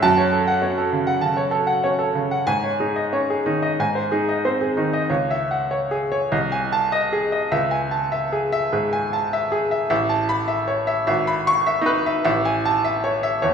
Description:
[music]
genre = classical, virtuoso piano study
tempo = 90-104 BPM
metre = 4/4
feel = rubato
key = C# minor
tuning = A4 = 441 Hz
[part]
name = clear baby grand piano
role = solo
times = 0.0-13.5 s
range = G#1 to C#6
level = -18 LUFS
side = equal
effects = none
[sound]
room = wet recital hall reverb, RT60 1.4 s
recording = recorded in a church or concert hall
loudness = -19 LUFS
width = side -7 dB against mid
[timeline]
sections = 0.0-5.1 A section; 5.1-13.5 B section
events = none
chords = 0.0 F#m; 2.5 G#sus4; 3.8 G#; 5.1 C#m; 6.3 G#/B#; 7.5 C#m; 9.9 A; 11.1 E/G#; 12.3 Amaj7

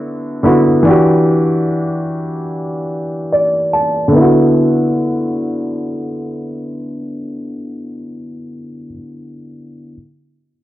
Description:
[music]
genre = R&B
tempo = 73 BPM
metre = 4/4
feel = swing 54% on 16ths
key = D major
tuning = A4 = 435 Hz
[part]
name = felt-muted upright piano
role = accompaniment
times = 0.0-10.0 s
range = D3 to A5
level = -14 LUFS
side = equal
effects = low-pass filter
[sound]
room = little or no reverb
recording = dry, gritty hardware recording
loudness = -12 LUFS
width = side -14 dB against mid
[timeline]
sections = 0.0-4.1 A section; 4.1-7.4 B section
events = filter sweep on felt piano 0.0-4.1; felt piano fill 2.9-4.1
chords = 0.0 D69; 0.9 Em9; 4.1 D69

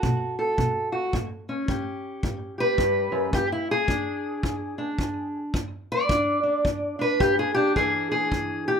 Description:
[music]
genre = acoustic country blues, solo or duo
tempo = 109 BPM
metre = 4/4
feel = swing 61% on 8ths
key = E mixolydian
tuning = A4 = 438 Hz
[part]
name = fingerpicked steel-string acoustic guitar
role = melody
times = 0.0-8.8 s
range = E2 to D5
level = -23 LUFS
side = equal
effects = slapback echo
[part]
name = kick drum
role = drums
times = 0.0-8.5 s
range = none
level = -29 LUFS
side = equal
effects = none
[sound]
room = moderate small room ambience, RT60 0.5 s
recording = rough home demo mix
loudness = -23 LUFS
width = side -7 dB against mid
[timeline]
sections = 0.0-7.8 A section; 7.8-8.8 B section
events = steel-string acoustic guitar solo 0.0-7.8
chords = 0.0 B5; 1.1 A7; 3.3 E7

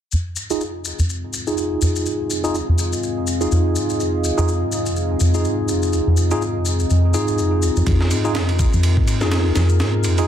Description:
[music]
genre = breakbeat, breaks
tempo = 124 BPM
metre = 4/4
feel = swing 57% on 16ths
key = F minor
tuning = A4 = 440 Hz
[part]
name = deep dark ambient pad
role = sustained chords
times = 1.0-10.3 s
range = C4 to Eb5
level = -25 LUFS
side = left 2 dB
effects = chorus, built-in reverb, vintage 12-bit sampler grit, sidechain pumping
[part]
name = deep acid bass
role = riff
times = 0.1-10.3 s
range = Eb2 to Ab2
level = -19 LUFS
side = equal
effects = ensemble chorus, cassette tape
[part]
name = shaker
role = drums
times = 0.1-10.3 s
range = none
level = -28 LUFS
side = left 4 dB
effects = small room ambience
[part]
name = tine electric piano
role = stabs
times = 0.5-10.3 s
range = Eb4 to Ab4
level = -23 LUFS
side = right 1 dB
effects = medium stereo tremolo, low-pass filter, ping-pong delay
[part]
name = breakbeat sampler-style drum kit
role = drums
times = 7.9-10.3 s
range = kick drum, ride cymbal, snare drum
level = -21 LUFS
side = equal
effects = small room ambience
[sound]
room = moderate plate reverb, RT60 1.1 s, digital ambience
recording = dense, heavily limited modern master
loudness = -17 LUFS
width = side -10 dB against mid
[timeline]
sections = 0.1-10.3 A section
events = filter sweep on acid bass 0.1-10.3; filter sweep on tine electric piano 0.1-10.3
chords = 0.1 Fm7

